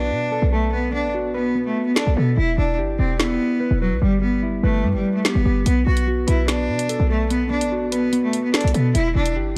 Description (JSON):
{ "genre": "hip hop, drill", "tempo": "146 BPM", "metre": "4/4", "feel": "half-time", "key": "B minor", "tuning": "A4 = 440 Hz", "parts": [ { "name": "bright cello", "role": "melody", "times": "0.0-9.3 s", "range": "F#3 to F#4", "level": "-25 LUFS", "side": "equal", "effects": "none" }, { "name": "mellow electric guitar", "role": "accompaniment", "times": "0.0-9.6 s", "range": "G3 to D5", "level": "-27 LUFS", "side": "equal", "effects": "none" }, { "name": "short 808-style bass", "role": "bass", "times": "0.0-9.6 s", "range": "E1 to B2", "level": "-23 LUFS", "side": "equal", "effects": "none" }, { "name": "drill drum kit", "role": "drums", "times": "2.0-9.4 s", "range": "finger snaps, hi-hat, snare drum", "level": "-26 LUFS", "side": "equal", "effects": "none" } ], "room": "light reverb", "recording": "dark, warm production", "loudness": "-20 LUFS", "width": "mono", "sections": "0.0-9.6 A section", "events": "break 0.0-5.7", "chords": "0.0 Bm7; 2.4 Em7; 4.0 G6; 5.7 Bm7; 8.9 Em7", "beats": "0.32 | 0.73 1.14 1.55 1.96 | 2.37 2.79 3.20 3.61 | 4.02 4.43 4.84 5.25 | 5.66 6.07 6.48 6.89 | 7.30 7.72 8.13 8.54 | 8.95 9.36" }